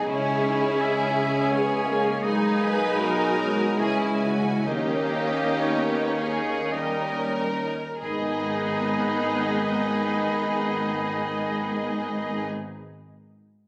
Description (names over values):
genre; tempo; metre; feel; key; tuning
classical; 44-85 BPM; 3/4; rubato; G# minor; A4 = 440 Hz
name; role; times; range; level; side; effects
rich symphonic violin section; melody; 0.0-12.4 s; D#5 to G#5; -38 LUFS; equal; none
bright oboe; second line; 0.0-12.4 s; C#5 to E5; -35 LUFS; equal; none
rich symphonic violin section; second line; 0.0-12.5 s; D#4 to B4; -33 LUFS; equal; none
silver concert flute; second line; 0.0-12.5 s; G5 to C#6; -37 LUFS; equal; none
warm clarinet; second line; 0.0-12.4 s; G#3 to D#4; -38 LUFS; equal; none
rich studio viola section; accompaniment; 0.0-12.5 s; B3 to G#4; -32 LUFS; equal; none
warm bassoon; accompaniment; 0.0-12.4 s; D#3 to B3; -35 LUFS; equal; none
dark French horn section; sustained chords; 0.0-12.4 s; G#3 to G#4; -35 LUFS; equal; none
rich symphonic double bass section; bass; 0.0-12.4 s; G#1 to D#2; -36 LUFS; equal; none
warm symphonic cello section; bass; 0.0-12.4 s; G#2 to C#4; -34 LUFS; equal; none
timpani; percussion; 4.7-12.4 s; G#2 to D#3; -42 LUFS; equal; none
room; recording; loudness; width
wet recital hall reverb, RT60 1.5 s; recorded on a phone in the room, club reverb; -25 LUFS; mono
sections
0.0-8.0 A section; 8.0-11.8 B section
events
slowing down 1.2-8.0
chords
0.1 C#m; 2.2 G#m/B; 3.8 C#m; 4.7 D#7; 8.0 G#m